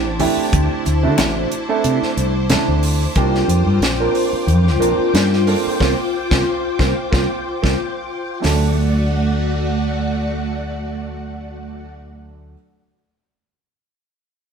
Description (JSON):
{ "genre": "electric jazz fusion", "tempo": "91 BPM", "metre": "4/4", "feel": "swing 55% on 16ths", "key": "D mixolydian", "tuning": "A4 = 440 Hz", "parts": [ { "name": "warm grand piano", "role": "accompaniment", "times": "0.0-12.5 s", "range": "F#3 to Bb4", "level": "-22 LUFS", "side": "right 6 dB", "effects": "none" }, { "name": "string machine, violas", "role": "sustained chords", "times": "0.0-11.8 s", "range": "A3 to D6", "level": "-22 LUFS", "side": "left 1 dB", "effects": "ensemble chorus" }, { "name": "mellow fretless electric bass", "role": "bass", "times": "0.0-12.5 s", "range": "A1 to D3", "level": "-19 LUFS", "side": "equal", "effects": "none" }, { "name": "tight funk drum kit", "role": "drums", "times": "0.2-8.6 s", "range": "hi-hat, kick drum, snare drum", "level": "-21 LUFS", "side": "equal", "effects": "none" }, { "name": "congas", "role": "percussion", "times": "0.2-2.7 s", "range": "none", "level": "-26 LUFS", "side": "left 3 dB", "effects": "none" } ], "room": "moderate stone room reverb, RT60 1.3 s", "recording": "band playing live in one room", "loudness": "-15 LUFS", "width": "side -6 dB against mid", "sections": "0.0-8.4 A section; 8.4-11.1 B section", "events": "band accent 5.8-8.4; drum fill 8.1-8.4", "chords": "0.0 D9sus4; 3.2 C9sus4; 8.4 D" }